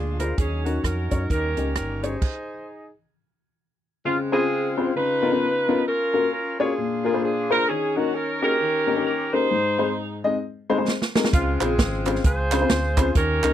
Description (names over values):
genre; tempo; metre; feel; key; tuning
uptempo gospel; 132 BPM; 4/4; swing 60% on 8ths; Db major; A4 = 440 Hz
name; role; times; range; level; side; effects
mellow saxophone section; melody; 0.0-13.5 s; Ab3 to C5; -24 LUFS; right 1 dB; none
dark grand piano; accompaniment; 0.0-13.5 s; Ab2 to Eb5; -24 LUFS; left 4 dB; none
dark French horn section; sustained chords; 0.0-2.2 s; Gb3 to F4; -36 LUFS; right 2 dB; none
fingered electric bass; bass; 0.0-2.1, 11.3-13.5 s; G1 to Gb2; -26 LUFS; right 1 dB; none
swinging big-band drum kit; drums; 0.2-2.3, 10.9-13.5 s; crash cymbal, hi-hat, kick drum, rim click, snare drum; -22 LUFS; right 1 dB; none
group handclap; percussion; 11.6-13.5 s; none; -29 LUFS; right 8 dB; none
room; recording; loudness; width
little or no reverb; dry, close 1970s-style studio recording; -20 LUFS; side -11 dB against mid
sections
0.0-4.0 A section; 4.0-13.5 B section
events
stop 2.2-4.0; drum fill 10.9-11.3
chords
0.4 Ebm7; 1.3 Eb7; 2.2 Ab; 4.0 Dbmaj7; 5.0 Db13; 5.9 Gbmaj7; 6.8 Bb7; 7.7 Ebm7; 8.6 Eb7; 9.5 Ab; 11.3 Dbmaj7